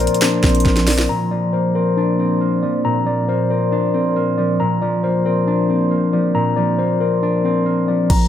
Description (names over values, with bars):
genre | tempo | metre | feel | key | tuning
hip hop, trap | 137 BPM | 4/4 | half-time | Bb major | A4 = 441 Hz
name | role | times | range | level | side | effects
concert harp | accompaniment | 0.0-8.3 s | Bb2 to D4 | -19 LUFS | equal | low-pass filter
warbly tape-like pad | sustained chords | 0.0-8.1 s | Bb2 to D5 | -28 LUFS | right 4 dB | chorus, built-in reverb
mellow tine electric piano | arpeggios | 0.0-8.3 s | C4 to Bb5 | -19 LUFS | left 3 dB | slow stereo tremolo, low-pass filter, tape echo
hard-hitting 808-style bass | bass | 0.0-1.1, 8.1-8.3 s | Bb1 | -19 LUFS | equal | none
trap drum kit | drums | 0.0-1.1, 8.1-8.2 s | crash cymbal, finger snaps, hi-hat, kick drum, snare drum | -17 LUFS | equal | none
room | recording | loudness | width
light reverb | none | -15 LUFS | side -10 dB against mid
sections
0.0-1.1 A section; 1.1-8.1 B section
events
drum fill 0.7-1.1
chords
0.0 Bbadd9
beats
0.22 0.66 | 1.09 1.53 1.97 2.41 | 2.85 3.28 3.72 4.16 | 4.60 5.04 5.47 5.91 | 6.35 6.79 7.22 7.66 | 8.10